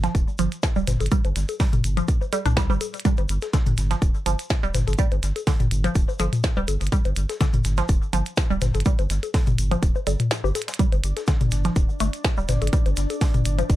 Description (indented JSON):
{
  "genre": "minimal techno",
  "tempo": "124 BPM",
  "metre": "4/4",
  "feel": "swing 54% on 16ths",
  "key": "unclear",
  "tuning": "A4 = 440 Hz",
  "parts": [
    { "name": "hollow square pluck", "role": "riff", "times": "0.0-13.7 s", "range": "D3 to G4", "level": "-28 LUFS", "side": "right 2 dB", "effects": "chorus, phaser, sidechain pumping, ping-pong delay" },
    { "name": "round analog bass", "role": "bass", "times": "0.0-13.8 s", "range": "D1 to C2", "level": "-24 LUFS", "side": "equal", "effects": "tube saturation, sidechain pumping" },
    { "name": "breakbeat sampler-style drum kit", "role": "drums", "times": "0.0-13.8 s", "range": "hi-hat, snare drum, tambourine", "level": "-38 LUFS", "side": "equal", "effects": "high-pass filter on snare, high-pass filter on perc, high-pass filter on hats" },
    { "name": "minimal click drum kit", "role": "drums", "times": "0.0-13.8 s", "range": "hi-hat, snare drum", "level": "-29 LUFS", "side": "right 2 dB", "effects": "none" },
    { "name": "tube shaker", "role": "percussion", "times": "0.0-13.8 s", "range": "none", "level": "-40 LUFS", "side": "left 2 dB", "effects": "none" },
    { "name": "electronic kick drum", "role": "drums", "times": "0.1-13.8 s", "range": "none", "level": "-21 LUFS", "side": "equal", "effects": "none" },
    { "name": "electronic toms and bongos", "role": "percussion", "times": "0.9-13.4 s", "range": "none", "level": "-27 LUFS", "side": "left 3 dB", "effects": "overdrive" },
    { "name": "pulsing gated texture", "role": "texture", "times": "11.0-13.8 s", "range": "D4 to D5", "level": "-34 LUFS", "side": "left 1 dB", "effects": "chorus, built-in reverb, sidechain pumping" }
  ],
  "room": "little or no reverb",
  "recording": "dark, warm production",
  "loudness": "-20 LUFS",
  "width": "side -15 dB against mid",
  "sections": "0.0-13.8 A section",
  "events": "break 10.3-10.8; drum fill 10.6",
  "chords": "0.0 G5",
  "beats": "0.15 0.63 | 1.12 1.60 2.08 2.57 | 3.05 3.54 4.02 4.50 | 4.99 5.47 5.96 6.44 | 6.92 7.41 7.89 8.37 | 8.86 9.34 9.83 10.31 | 10.79 11.28 11.76 12.24 | 12.73 13.21 13.70"
}